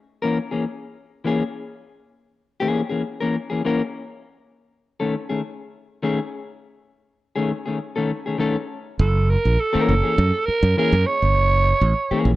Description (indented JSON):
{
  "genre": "funk",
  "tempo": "101 BPM",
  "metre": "4/4",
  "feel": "straight",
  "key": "F# mixolydian",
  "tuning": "A4 = 440 Hz",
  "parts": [
    { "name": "clean electric guitar", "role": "accompaniment", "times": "0.2-12.3 s", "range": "D#3 to A#4", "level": "-22 LUFS", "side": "left 3 dB", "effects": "tube saturation, spring reverb" },
    { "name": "growling alto saxophone", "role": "melody", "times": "9.0-12.2 s", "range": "A4 to C#5", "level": "-20 LUFS", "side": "right 3 dB", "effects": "none" },
    { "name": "modern bright fingered electric bass", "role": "bass", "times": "9.0-12.4 s", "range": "F#1 to F#2", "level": "-18 LUFS", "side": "right 1 dB", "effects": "none" }
  ],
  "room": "little or no reverb",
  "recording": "dry, close 1970s-style studio recording",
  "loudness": "-19 LUFS",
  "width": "side -16 dB against mid",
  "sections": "0.0-9.0 A section; 9.0-12.4 B section",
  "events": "none",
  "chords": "0.0 E6; 4.2 Amaj7#11/D#; 9.0 F#9",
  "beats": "0.08 0.67 1.26 | 1.86 2.45 3.05 3.64 | 4.24 4.83 5.43 6.02 | 6.62 7.21 7.80 8.40 | 8.99 9.58 10.18 10.77 | 11.36 11.95"
}